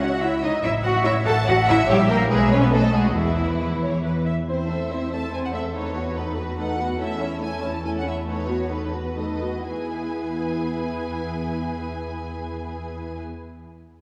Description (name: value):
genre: quick classical-period movement for string orchestra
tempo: 120-146 BPM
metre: 3/4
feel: rubato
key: E major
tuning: A4 = 440 Hz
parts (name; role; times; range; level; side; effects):
- clear studio violin section; melody; 0.0-13.2 s; E4 to A5; -33 LUFS; equal; none
- rich studio violin section; second line; 0.0-13.2 s; C#4 to A5; -32 LUFS; equal; none
- rich studio viola section; accompaniment; 0.0-13.2 s; A3 to G5; -31 LUFS; equal; none
- rich studio double bass section; bass; 0.0-4.2 s; A1 to E2; -27 LUFS; equal; none
- warm studio cello section; bass; 0.0-13.2 s; E2 to A4; -28 LUFS; equal; none
room: wet scoring stage reverb, RT60 2.0 s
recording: heard from further back in the room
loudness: -23 LUFS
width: mono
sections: 0.0-4.5 A section; 4.5-9.7 B section; 9.7-12.5 C section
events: slowing down 6.4-9.7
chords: 0.0 C#m; 0.6 F#m7/A; 1.9 A#dim7; 2.3 E/B; 2.7 B; 3.2 E5; 4.5 Am/E; 5.7 B7/E; 7.0 A/E; 8.3 B7/E; 9.7 E